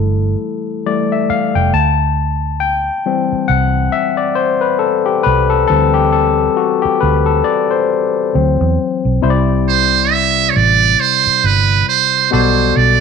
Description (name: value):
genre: R&B, neo-soul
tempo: 68 BPM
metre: 4/4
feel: swing 59% on 16ths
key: unclear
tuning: A4 = 439 Hz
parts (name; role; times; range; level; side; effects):
- barky tine electric piano; accompaniment; 0.0-13.0 s; B2 to A5; -15 LUFS; left 7 dB; overdrive
- vintage muted fingered electric bass; bass; 0.0-13.0 s; F1 to E2; -16 LUFS; right 3 dB; none
- trumpet with metal mute; melody; 9.7-13.0 s; B4 to E5; -12 LUFS; right 11 dB; none
room: moderate echo chamber reverb, RT60 1.3 s, small room ambience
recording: 1960s-style stereo with parts hard left and right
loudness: -12 LUFS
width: side -6 dB against mid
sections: 0.0-9.2 A section; 9.2-13.0 B section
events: tine electric piano solo 0.0-9.2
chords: 0.0 Fmaj7; 1.7 D7sus4; 8.3 D9; 9.2 C; 12.3 Gmaj7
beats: 0.39 1.28 | 2.16 3.04 3.92 4.80 | 5.69 6.57 7.45 8.34 | 9.22 10.10 10.98 11.86 | 12.75